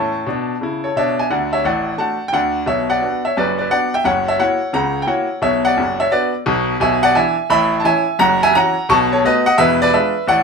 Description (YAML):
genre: jazz, stride piano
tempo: 174 BPM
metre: 4/4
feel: swing 66% on 8ths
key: unclear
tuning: A4 = 442 Hz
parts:
  - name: bright concert grand piano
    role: solo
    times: 0.0-10.4 s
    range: E1 to C#6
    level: -14 LUFS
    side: equal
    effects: none
room: moderate club reverb, RT60 0.6 s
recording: minimal, uncompressed stereo recording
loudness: -14 LUFS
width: side -5 dB against mid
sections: 0.0-1.3 A section; 1.3-10.4 B section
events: none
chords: 0.0 A; 1.3 D; 2.7 Bm; 4.1 F#7; 5.4 Bm; 6.8 E7/B; 7.5 A; 8.2 F#7; 8.9 B7; 9.6 E7b9